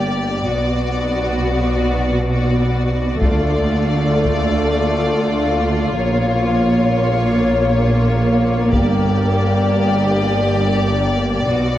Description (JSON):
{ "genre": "cinematic, epic orchestral film score", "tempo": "87 BPM", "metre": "4/4", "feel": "straight", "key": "unclear", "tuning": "A4 = 440 Hz", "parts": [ { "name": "bright symphonic violin section", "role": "melody", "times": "0.0-11.8 s", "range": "Db5 to D5", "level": "-23 LUFS", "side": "left 3 dB", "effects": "none" }, { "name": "rich symphonic violin section", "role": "second line", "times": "0.0-11.8 s", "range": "F4 to G4", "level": "-23 LUFS", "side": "left 4 dB", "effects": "none" }, { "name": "dark symphonic viola section", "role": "accompaniment", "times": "0.0-11.8 s", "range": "A3 to B3", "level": "-22 LUFS", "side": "equal", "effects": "none" }, { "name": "rich symphonic cello section", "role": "bass", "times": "0.0-11.8 s", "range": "G2 to D3", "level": "-21 LUFS", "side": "right 1 dB", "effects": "none" }, { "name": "rich symphonic double bass section", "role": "bass", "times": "0.0-11.8 s", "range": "G1 to D2", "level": "-20 LUFS", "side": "right 1 dB", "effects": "none" }, { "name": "taiko ensemble", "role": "drums", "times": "3.2-4.6, 8.7-10.1 s", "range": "none", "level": "-22 LUFS", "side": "equal", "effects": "none" }, { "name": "cymbal swell", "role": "sound effects", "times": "11.5-11.8 s", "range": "none", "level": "barely audible", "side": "none", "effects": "none" } ], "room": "moderate scoring stage reverb, RT60 1.4 s", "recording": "worn, warbling old tape, cassette tape, warbly pitch drift", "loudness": "-15 LUFS", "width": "side -13 dB against mid", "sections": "0.0-11.8 A section", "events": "build-up 0.0-11.8", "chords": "0.5 Bm; 3.2 Dm; 6.0 Bbm; 8.7 Gm", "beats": "| 0.45 1.14 1.83 2.52 | 3.21 3.90 4.59 5.28 | 5.97 6.66 7.35 8.04 | 8.73 9.42 10.11 10.80 | 11.49" }